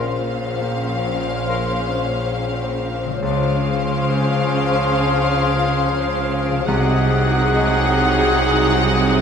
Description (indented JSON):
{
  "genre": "cinematic, emotional film score for orchestra",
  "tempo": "69 BPM",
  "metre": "4/4",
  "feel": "rubato",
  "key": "Bb minor",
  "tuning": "A4 = 442 Hz",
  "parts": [
    { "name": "rich studio violin section", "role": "melody", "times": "0.0-9.2 s", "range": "F5 to Gb5", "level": "-25 LUFS", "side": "left 3 dB", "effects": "none" },
    { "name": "clear clarinet", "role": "second line", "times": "0.0-9.2 s", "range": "Ab4 to Bb4", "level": "-29 LUFS", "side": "left 1 dB", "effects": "none" },
    { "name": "large flute ensemble", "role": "second line", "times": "0.0-9.2 s", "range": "C6 to Eb6", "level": "-28 LUFS", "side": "left 3 dB", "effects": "none" },
    { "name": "mellow oboe", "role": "second line", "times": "0.0-9.2 s", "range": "F5 to Gb5", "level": "-27 LUFS", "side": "left 1 dB", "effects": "none" },
    { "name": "warm studio violin section", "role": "second line", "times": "0.0-9.2 s", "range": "Ab4 to C5", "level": "-29 LUFS", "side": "left 3 dB", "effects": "none" },
    { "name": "clear concert grand piano", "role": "accompaniment", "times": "0.0-9.2 s", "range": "Bb1 to Eb5", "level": "-27 LUFS", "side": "equal", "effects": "none" },
    { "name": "rich studio viola section", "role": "accompaniment", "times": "0.0-9.2 s", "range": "Db4 to Eb4", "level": "-28 LUFS", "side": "right 3 dB", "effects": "none" },
    { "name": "warm French horn section", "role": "sustained chords", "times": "0.0-9.2 s", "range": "Db3 to C5", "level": "-26 LUFS", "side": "left 3 dB", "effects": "none" },
    { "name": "concert harp", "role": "arpeggios", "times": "0.0-9.2 s", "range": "Bb2 to Eb5", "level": "-29 LUFS", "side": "left 7 dB", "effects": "none" },
    { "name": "rich studio cello section", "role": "bass", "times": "0.0-9.2 s", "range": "Bb2 to Db3", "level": "-24 LUFS", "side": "right 2 dB", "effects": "none" },
    { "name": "rich studio double bass section", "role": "bass", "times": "0.0-9.2 s", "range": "Bb1 to Db2", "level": "-24 LUFS", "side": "right 3 dB", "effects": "none" }
  ],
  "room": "wet scoring stage reverb, RT60 1.6 s",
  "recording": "none",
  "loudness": "-16 LUFS",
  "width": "side -7 dB against mid",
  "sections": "0.0-9.2 A section",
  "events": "none",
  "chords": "0.0 Bbmadd9; 3.2 Dbmaj7; 6.7 Ab7/C",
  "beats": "0.61 1.49 2.37 | 3.24 4.10 4.96 5.82 | 6.68 7.54 8.41"
}